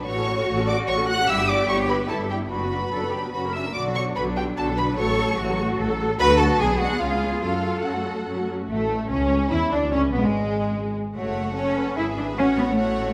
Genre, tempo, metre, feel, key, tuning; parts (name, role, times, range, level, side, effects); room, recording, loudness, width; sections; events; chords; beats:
quick classical-period movement for string orchestra; 146 BPM; 3/4; straight; F# minor from 6.2 s; A4 = 439 Hz
warm studio violin section; second line; 0.0-13.1 s; G#3 to F#5; -29 LUFS; equal
rich studio viola section; accompaniment; 0.0-13.1 s; D3 to A#4; -31 LUFS; equal
rich studio double bass section; bass; 0.0-13.1 s; F#1 to F#2; -30 LUFS; equal
warm studio cello section; bass; 0.0-13.1 s; G#3 to A4; -29 LUFS; equal
warm studio violin section; melody; 0.1-13.1 s; G#3 to F#6; -31 LUFS; equal
wet scoring stage reverb, RT60 1.8 s; -23 LUFS; mono
0.0-8.7 A section; 8.7-13.1 B section
0.1 F#m/A; 1.3 Em/G; 2.5 Bm/F#; 3.3 F#; 3.7 Bm; 5.0 F#m/A; 6.2 D; 6.6 G#dim/B; 7.0 C#7; 7.4 F#m; 8.7 Aadd11; 9.9 C#5; 11.2 F#m; 12.4 F#m/A
| 0.05 0.47 0.87 | 1.28 1.69 2.09 | 2.50 2.92 3.33 | 3.75 4.16 4.57 | 4.98 5.39 5.79 | 6.20 6.60 7.01 | 7.43 7.84 8.27 | 8.69 9.10 9.51 | 9.92 10.33 10.74 | 11.15 11.56 11.97 | 12.38 12.79